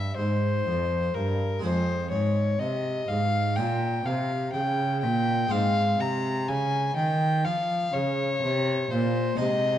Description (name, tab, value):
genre	classical, baroque-style sonata movement with continuo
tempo	62 BPM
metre	4/4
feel	straight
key	F minor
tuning	A4 = 440 Hz
part	rich violin	melody	0.0-9.8 s	Bb4 to Bb5	-27 LUFS	left 2 dB	none
part	harpsichord	accompaniment	0.0-9.8 s	F2 to C5	-31 LUFS	right 1 dB	none
part	warm cello	bass	0.0-9.8 s	F2 to F3	-28 LUFS	right 1 dB	none
room	moderate recital hall reverb, RT60 1.4 s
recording	dark, warm production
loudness	-24 LUFS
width	side -11 dB against mid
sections	0.0-9.8 A section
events	none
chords	0.0 C7(no3); 1.6 Fm; 3.6 Bbm69; 5.5 Fm/Ab